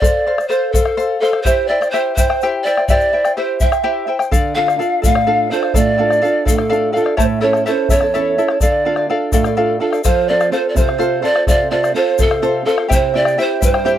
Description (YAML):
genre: andean folk, Andean ensemble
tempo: 84 BPM (dotted quarters)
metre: 6/8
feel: straight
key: unclear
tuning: A4 = 441 Hz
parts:
  - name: breathy mellow pan flute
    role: melody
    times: 0.0-13.9 s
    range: A4 to F5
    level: -16 LUFS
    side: right 1 dB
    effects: none
  - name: charango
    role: accompaniment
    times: 0.0-14.0 s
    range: E4 to A5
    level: -19 LUFS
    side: left 4 dB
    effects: none
  - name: bombo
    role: percussion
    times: 0.0-13.9 s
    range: none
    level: -18 LUFS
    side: left 1 dB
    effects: none
  - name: tube shaker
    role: percussion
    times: 0.0-13.9 s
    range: none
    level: -29 LUFS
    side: left 10 dB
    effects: none
  - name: nylon-string guitar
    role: accompaniment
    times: 4.3-14.0 s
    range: E2 to A4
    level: -20 LUFS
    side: right 6 dB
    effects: none
room: little or no reverb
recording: dry, close 1970s-style studio recording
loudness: -13 LUFS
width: side -11 dB against mid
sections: 0.0-10.0 A section; 10.0-14.0 A section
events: none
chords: 0.0 F; 1.5 C; 4.3 Dm; 7.2 A; 8.6 Dm; 10.0 F; 12.9 C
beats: | 0.03 0.74 | 1.45 2.17 | 2.88 3.60 | 4.31 5.03 | 5.74 6.46 | 7.18 7.89 | 8.61 9.32 | 10.04 10.76 | 11.47 12.19 | 12.91 13.62